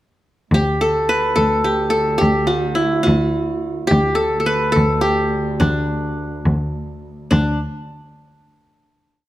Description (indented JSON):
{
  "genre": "arabic",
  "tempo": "71 BPM (dotted quarters)",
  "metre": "6/8",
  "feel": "straight",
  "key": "D maqam rast",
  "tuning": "A4 = 443 Hz",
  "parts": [
    { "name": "qanun", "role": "melody", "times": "0.5-7.6 s", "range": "D4 to B4", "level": "-18 LUFS", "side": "equal", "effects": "none" },
    { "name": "rich cello", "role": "bass", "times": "0.5-7.6 s", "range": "D2", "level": "-20 LUFS", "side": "equal", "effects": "none" },
    { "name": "muted chamber cello section", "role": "drone", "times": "0.5-7.4 s", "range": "D2", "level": "-27 LUFS", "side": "right 2 dB", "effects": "none" }
  ],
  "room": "moderate recital hall reverb, RT60 1.6 s",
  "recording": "none",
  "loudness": "-16 LUFS",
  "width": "side -14 dB against mid",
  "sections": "0.5-7.3 A section; 7.3-9.0 final note",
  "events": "none",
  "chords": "none"
}